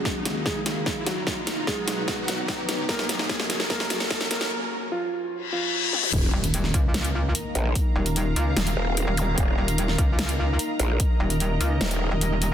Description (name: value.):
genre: heavy wobble dubstep.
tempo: 148 BPM.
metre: 4/4.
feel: half-time.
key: Eb minor.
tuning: A4 = 440 Hz.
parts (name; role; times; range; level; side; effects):
dark grand piano; melody; 0.0-6.1 s; F3 to Bb4; -31 LUFS; right 1 dB; digital delay.
evolving wavetable pad; sustained chords; 0.0-12.5 s; Eb2 to Bb5; -34 LUFS; left 1 dB; chorus, built-in reverb, sidechain pumping.
riser, reverse cymbal, impact and zap; sound effects; 0.0-9.3 s; none; -30 LUFS; left 2 dB; none.
granular cloud pad; texture; 0.0-12.5 s; Db4 to Bb5; -33 LUFS; equal; built-in reverb, sidechain pumping.
big-room dance drum kit; drums; 0.1-12.5 s; crash cymbal, hi-hat, snare drum, toms; -28 LUFS; equal; high-pass filter on snare, high-pass filter on hats, high-pass filter on toms, high-pass filter on cymbals, high-pass filter on room.
electronic kick drum; drums; 0.1-11.1 s; none; -26 LUFS; equal; none.
growl bass; bass; 6.1-12.1 s; Eb1 to Bb1; -24 LUFS; equal; chorus, overdrive.
metallic wobble bass; bass; 6.3-12.5 s; Eb1 to Db2; -24 LUFS; equal; chorus, overdrive.
room: light reverb, digital ambience.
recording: dense, heavily limited modern master, high-pass filter.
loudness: -22 LUFS.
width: side -10 dB against mid.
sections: 0.0-6.1 A section; 6.1-12.5 B section.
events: build-up 0.0-6.1; drum fill 0.0-4.5, 5.9; riser 0.0-4.5; filter sweep on ambient pad 0.0-6.1; filter sweep 0.0-6.1; reverse cymbal 5.4-6.1; drop 6.1-12.5; impact 6.1-7.8.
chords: 0.0 Ebmadd9; 1.3 B; 2.9 Gb6; 4.5 Fsus4; 6.1 Eb5.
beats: 0.05 0.46 0.86 | 1.27 1.67 2.08 2.48 | 2.89 3.29 3.70 4.11 | 4.51 4.92 5.32 5.73 | 6.13 6.54 6.94 7.35 | 7.75 8.16 8.56 8.97 | 9.38 9.78 10.19 10.59 | 11.00 11.40 11.81 12.21.